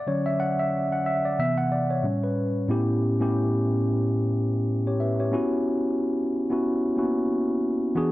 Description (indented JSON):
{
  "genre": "soul",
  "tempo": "91 BPM",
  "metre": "4/4",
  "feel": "swing 58% on 16ths",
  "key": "unclear",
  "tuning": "A4 = 440 Hz",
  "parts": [
    { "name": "mellow tine electric piano", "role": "solo", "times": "0.0-8.1 s", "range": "A2 to F#5", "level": "-22 LUFS", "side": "equal", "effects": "none" }
  ],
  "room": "light reverb",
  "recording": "dark, warm production",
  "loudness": "-22 LUFS",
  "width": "side -16 dB against mid",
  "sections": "0.0-2.7 A section; 2.7-5.3 B section; 5.3-8.1 C section",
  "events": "tine electric piano solo 0.0-2.7",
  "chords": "0.0 Dmaj7; 1.4 Cmaj7; 2.0 A9; 5.3 F#7sus4"
}